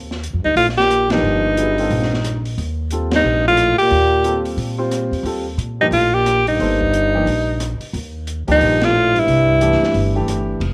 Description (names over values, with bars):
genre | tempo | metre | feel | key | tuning
modal jazz | 179 BPM | 4/4 | swing 62% on 8ths | Eb lydian | A4 = 440 Hz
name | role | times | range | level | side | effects
upright bass | bass | 0.0-10.7 s | F1 to Bb2 | -24 LUFS | equal | none
open jazz drum kit | drums | 0.1-10.7 s | hi-hat, kick drum, ride cymbal, rim click, snare drum | -31 LUFS | equal | none
bright alto saxophone | melody | 0.4-10.3 s | Eb4 to G4 | -18 LUFS | equal | none
breathy trombone | second line | 0.4-10.3 s | G2 to Bb2 | -27 LUFS | equal | none
warm baby grand piano | accompaniment | 1.1-10.6 s | E3 to C5 | -26 LUFS | equal | none
room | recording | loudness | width
light reverb, studio reverb | none | -17 LUFS | mono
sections
0.0-10.6 A section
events
band accent 1.1, 3.1, 8.8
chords
0.0 Ebadd9(#11); 9.3 C